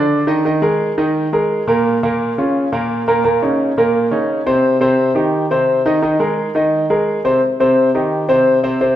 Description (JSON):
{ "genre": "latin", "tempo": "172 BPM", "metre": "4/4", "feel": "straight", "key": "unclear", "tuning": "A4 = 440 Hz", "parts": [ { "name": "clear concert grand piano", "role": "solo", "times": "0.0-9.0 s", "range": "Bb2 to Eb5", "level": "-13 LUFS", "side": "equal", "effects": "none" } ], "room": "wet recital hall reverb, RT60 1.8 s", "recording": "minimal, uncompressed stereo recording", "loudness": "-13 LUFS", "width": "side -12 dB against mid", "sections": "0.0-7.4 A section; 7.4-9.0 A section", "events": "none", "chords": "0.5 Ebsus4; 1.9 Bbm; 3.2 Eb5/Bb; 4.6 Cm; 6.0 Ebsus4; 7.4 Cm", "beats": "0.11 | 0.46 0.80 1.15 1.50 | 1.85 2.20 2.55 2.90 | 3.25 3.60 3.94 4.29 | 4.64 4.99 5.34 5.69 | 6.03 6.38 6.73 7.08 | 7.43 7.77 8.12 8.47 | 8.82" }